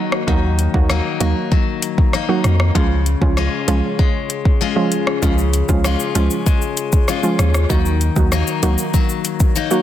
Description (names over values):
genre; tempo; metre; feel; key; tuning
dancehall; 97 BPM; 4/4; straight; Eb minor; A4 = 441 Hz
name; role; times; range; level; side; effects
picked steel-string acoustic guitar; arpeggios; 0.0-9.8 s; Db3 to F4; -22 LUFS; left 8 dB; none
afro-pop drum kit; drums; 0.1-9.8 s; hi-hat, kick drum, rim click, shaker; -18 LUFS; equal; none
soft round pluck; accompaniment; 0.3-9.8 s; F3 to Gb4; -21 LUFS; right 3 dB; chorus, sidechain pumping
punchy sub bass; bass; 0.3-8.8 s; C2 to F2; -17 LUFS; equal; none
room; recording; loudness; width
light reverb; dense, heavily limited modern master; -14 LUFS; side -11 dB against mid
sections
0.0-9.8 A section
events
none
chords
0.0 Ebm; 2.8 Db; 7.7 Ebm